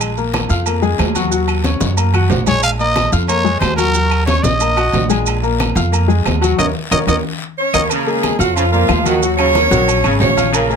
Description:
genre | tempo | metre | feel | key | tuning
latin, salsa | 182 BPM | 4/4 | straight | Bb minor | A4 = 439 Hz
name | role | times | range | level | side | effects
clear baby grand piano | accompaniment | 0.0-10.8 s | F3 to Gb6 | -19 LUFS | left 7 dB | none
upright bass | bass | 0.0-10.8 s | Ab1 to Gb2 | -18 LUFS | right 1 dB | none
agogo bells and timbales | percussion | 0.0-10.7 s | none | -24 LUFS | right 11 dB | none
claves | percussion | 0.0-10.7 s | none | -26 LUFS | left 8 dB | none
congas | percussion | 0.0-10.8 s | none | -24 LUFS | left 4 dB | none
guiro | percussion | 0.0-10.8 s | none | -30 LUFS | left 6 dB | none
maracas | percussion | 0.0-10.8 s | none | -26 LUFS | right 10 dB | none
growling trumpet | melody | 2.5-7.8 s | Bb4 to F5 | -17 LUFS | right 1 dB | none
warm horn section | melody | 7.6-10.8 s | F3 to Db5 | -16 LUFS | right 3 dB | none
bright trombone section | second line | 7.9-10.8 s | Bb2 to Eb3 | -22 LUFS | right 1 dB | none
room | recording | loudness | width
light reverb | close, detailed microphones | -13 LUFS | side -6 dB against mid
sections
0.0-7.9 A section; 7.9-10.8 B section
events
drum fill 2.1-2.6, 7.1-7.9; band accent 6.6-7.9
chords
0.0 Bb5; 1.3 Ebm7; 2.6 Bbm7; 3.9 Ebm7; 5.3 Bb5; 6.6 Eb5; 7.9 Bbm7; 9.2 Ebm7

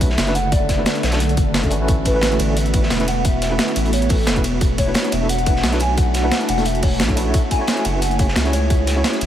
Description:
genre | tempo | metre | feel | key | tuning
liquid drum and bass | 176 BPM | 4/4 | swing 53% on 16ths | A major | A4 = 439 Hz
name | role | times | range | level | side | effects
hollow clarinet-like synth lead | melody | 0.0-9.0 s | A4 to G#5 | -24 LUFS | equal | lush chorus, tape echo
mellow tine electric piano | accompaniment | 0.0-9.3 s | A3 to C#5 | -25 LUFS | equal | medium tremolo, tape echo
ethereal airy pad | sustained chords | 0.0-9.3 s | D3 to A4 | -25 LUFS | right 1 dB | ensemble chorus, built-in reverb, sidechain pumping
saturated sub bass | bass | 0.0-9.3 s | E1 to C#2 | -21 LUFS | equal | none
breakbeat sampler-style drum kit | drums | 0.0-9.3 s | hi-hat, ride cymbal, snare drum | -24 LUFS | right 1 dB | none
crunchy breakbeat drum kit | drums | 0.0-9.3 s | hi-hat, snare drum | -28 LUFS | equal | high-pass filter on hats, high-pass filter on snare, high-pass filter on room
electronic kick drum | drums | 0.0-8.8 s | none | -19 LUFS | equal | none
room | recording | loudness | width
moderate huge ambient reverb, RT60 7.5 s | dreamy mix soaked in reverb | -16 LUFS | side -11 dB against mid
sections
0.0-9.3 A section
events
none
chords
0.0 Bm9; 1.9 A69; 4.6 E9sus4; 7.3 F#m7

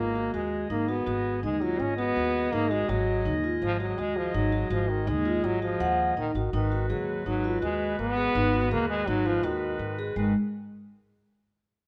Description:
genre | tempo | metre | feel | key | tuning
contemporary instrumental, chamber music in an uneven meter | 165 BPM | 5/4 | straight | G# dorian | A4 = 438 Hz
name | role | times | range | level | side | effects
clear French horn | second line | 0.0-10.3 s | D#3 to C#4 | -32 LUFS | equal | none
warm woodwind section | sustained chords | 0.0-10.3 s | G#3 to D#5 | -38 LUFS | equal | none
vibraphone with soft mallets | arpeggios | 0.0-10.3 s | G#3 to F#5 | -32 LUFS | equal | none
upright bass | bass | 0.0-10.3 s | G#1 to D#2 | -34 LUFS | equal | none
room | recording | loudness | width
light reverb | close, detailed microphones | -27 LUFS | mono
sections
0.0-6.5 A section; 6.5-10.2 B section; 10.2-11.9 C section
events
none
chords
0.0 G#7(no3); 6.5 G#m7

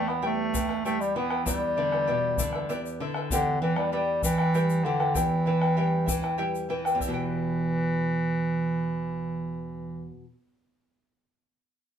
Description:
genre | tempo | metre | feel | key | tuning
andean folk, Andean ensemble | 65 BPM (dotted quarters) | 6/8 | straight | E minor pentatonic | A4 = 440 Hz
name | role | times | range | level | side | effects
clear bass clarinet | melody | 0.0-10.2 s | D3 to B3 | -26 LUFS | right 1 dB | none
charango | accompaniment | 0.0-10.6 s | E4 to G5 | -31 LUFS | equal | none
nylon-string guitar | accompaniment | 0.0-10.2 s | E2 to G3 | -34 LUFS | left 1 dB | none
bombo | percussion | 0.1-7.3 s | none | -34 LUFS | left 2 dB | none
egg shaker | percussion | 0.5-7.3 s | none | -35 LUFS | left 6 dB | none
room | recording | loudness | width
wet studio reverb, RT60 0.5 s | band playing live in one room | -24 LUFS | side -8 dB against mid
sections
0.0-7.0 A section; 7.0-10.7 B section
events
none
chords
0.0 Em; 1.5 G/E; 3.3 Em

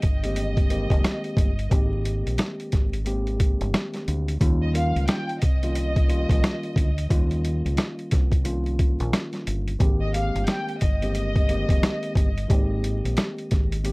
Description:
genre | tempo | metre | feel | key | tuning
hip hop, boom-bap hip-hop | 89 BPM | 4/4 | swing 60% on 16ths | Ab major | A4 = 441 Hz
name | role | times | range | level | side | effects
warm studio violin section | melody | 0.0-12.5 s | Eb5 to G5 | -32 LUFS | equal | high-pass filter, low-pass filter, tape echo
deep dub fingered electric bass | bass | 0.0-13.9 s | F1 to Eb2 | -26 LUFS | equal | tube saturation
boom bap sampler-style drum kit | drums | 0.0-13.9 s | hi-hat, kick drum, rim click, snare drum | -22 LUFS | equal | none
mellow tine electric piano | accompaniment | 0.2-13.9 s | Eb3 to G4 | -30 LUFS | equal | medium stereo tremolo, cassette tape, high-pass filter, low-pass filter
room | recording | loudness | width
little or no reverb | dry, gritty hardware recording, transformer saturation, vinyl crackle, lossy compression artefacts | -21 LUFS | side -27 dB against mid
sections
0.0-13.9 A section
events
none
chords
0.0 Abmaj9; 4.4 Eb7; 9.8 Abmaj9

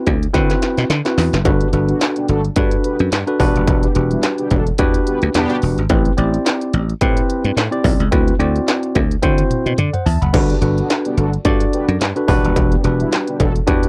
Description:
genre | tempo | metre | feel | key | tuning
early-eighties boogie funk | 108 BPM | 4/4 | swing 56% on 16ths | G major | A4 = 440 Hz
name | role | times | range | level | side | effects
tine electric piano | accompaniment | 0.0-13.9 s | C4 to B5 | -22 LUFS | equal | overdrive
dry thumbed slap bass | bass | 0.1-13.9 s | Eb1 to D3 | -20 LUFS | equal | none
industrial drum kit | drums | 0.1-13.9 s | crash cymbal, handclaps, hi-hat, kick drum, snare drum, toms | -21 LUFS | equal | distortion
mellow synth brass | second line | 1.6-5.6, 10.5-13.5 s | G3 to B4 | -26 LUFS | equal | chorus
room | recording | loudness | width
little or no reverb | dry, close 1970s-style studio recording | -17 LUFS | mono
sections
0.0-10.3 A section; 10.3-13.9 A section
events
drum fill 0.3-1.5, 9.2-10.3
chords
0.0 D13; 1.5 Gmaj7; 3.4 Em9; 5.9 Am9; 8.1 D13; 10.3 Gmaj7; 12.3 Em9

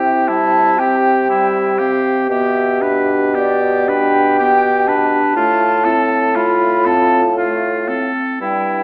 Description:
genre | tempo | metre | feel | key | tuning
classical, slow romantic movement for wind quintet | 37-41 BPM (dotted quarters) | 6/8 | rubato | unclear | A4 = 440 Hz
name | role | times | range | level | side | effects
mellow concert flute | melody | 0.0-8.8 s | D5 to B5 | -20 LUFS | equal | none
clear oboe | second line | 0.0-8.8 s | E4 to B4 | -23 LUFS | equal | none
warm French horn | accompaniment | 0.0-8.8 s | E4 to G4 | -22 LUFS | equal | none
warm clarinet | accompaniment | 0.0-8.8 s | G3 to D4 | -26 LUFS | equal | none
mellow bassoon | bass | 0.0-8.8 s | G2 to C3 | -23 LUFS | equal | none
room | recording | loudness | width
moderate recital hall reverb, RT60 1.5 s | small speaker sound | -15 LUFS | mono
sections
0.0-8.8 A section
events
none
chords
0.0 C; 2.3 G/B; 5.4 F/A

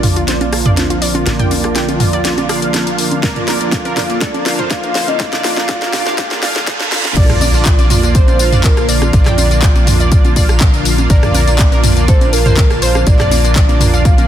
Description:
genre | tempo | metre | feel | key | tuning
progressive house | 122 BPM | 4/4 | straight | Bb major | A4 = 440 Hz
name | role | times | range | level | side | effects
soft octave-layered synth lead | melody | 0.0-14.3 s | Bb4 to F5 | -21 LUFS | equal | chorus, phaser, dub echo
airy breathy pad | sustained chords | 0.0-14.3 s | D3 to A5 | -22 LUFS | equal | chorus, sidechain pumping
wide unison pluck | arpeggios | 0.0-14.3 s | Bb3 to G5 | -23 LUFS | equal | sidechain pumping, dub echo
soft supersaw | stabs | 0.0-14.3 s | Bb3 to F5 | -20 LUFS | right 3 dB | analog chorus, sidechain pumping, low-pass filter, dub echo
tight sequencer bass | bass | 0.0-14.3 s | Bb1 | -16 LUFS | equal | sidechain pumping
house drum kit | drums | 0.0-14.3 s | crash cymbal, handclaps, hi-hat, rim click, snare drum, tambourine | -18 LUFS | left 2 dB | overdrive
electronic toms and congas | percussion | 0.0-14.3 s | none | -18 LUFS | right 1 dB | sidechain pumping on toms, sidechain pumping on perc
riser, reverse cymbal and impact | sound effects | 3.2-9.1 s | none | -25 LUFS | equal | none
electronic kick drum | drums | 3.2-14.2 s | none | -11 LUFS | equal | overdrive
room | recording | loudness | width
light reverb, digital ambience | dense, heavily limited modern master, high-pass filter | -10 LUFS | side -11 dB against mid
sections
0.0-7.2 A section; 7.2-14.3 B section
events
build-up 0.0-7.2; drum fill 0.0-7.2; filter sweep on supersaw synth 0.0-7.2; filter sweep on soft synth lead 0.0-7.2; filter sweep 0.0-7.2; reverse cymbal 6.2-7.2; drop 7.2-14.3; impact 7.2-9.1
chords
0.0 Bb

